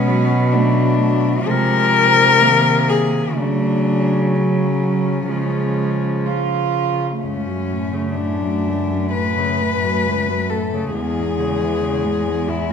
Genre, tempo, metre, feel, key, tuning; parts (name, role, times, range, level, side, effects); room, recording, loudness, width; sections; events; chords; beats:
classical, lyrical piece for cello ensemble; 60-68 BPM; 4/4; rubato; F# minor; A4 = 440 Hz
warm cello; melody; 0.0-12.7 s; C#4 to B4; -19 LUFS; left 6 dB
warm cello; second line; 0.0-12.7 s; F#3 to E#4; -23 LUFS; right 5 dB
rich cello; accompaniment; 0.0-12.7 s; C#2 to F#3; -24 LUFS; left 1 dB
rich cello; bass; 0.0-12.7 s; E2 to C#3; -21 LUFS; right 1 dB
wet recital hall reverb, RT60 1.4 s; -15 LUFS; side -7 dB against mid
0.0-12.7 A section
0.0 Bm7; 1.5 G#/B#; 3.4 F#m/C#; 5.3 C#; 7.2 F#m/C#; 11.0 C#m/E
0.51 1.46 2.40 | 3.35 4.32 5.29 6.27 | 7.22 8.16 9.14 10.06 | 10.95 11.84